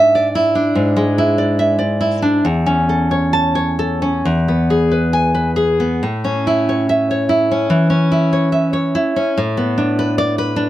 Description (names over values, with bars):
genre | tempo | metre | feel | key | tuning
romantic piece for solo classical guitar | 65-79 BPM | 4/4 | rubato | A major | A4 = 440 Hz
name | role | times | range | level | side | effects
nylon-string guitar | solo | 0.0-10.7 s | E2 to A5 | -14 LUFS | equal | none
room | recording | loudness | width
light reverb | close, detailed microphones | -14 LUFS | side -14 dB against mid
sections
0.0-10.7 A section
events
none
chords
0.0 E7/G#; 2.5 A/E; 4.3 E; 6.0 A; 9.4 Bm7/A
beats
0.75 1.59 | 2.45 3.35 4.26 5.15 | 6.05 6.91 7.72 8.54 | 9.38 10.20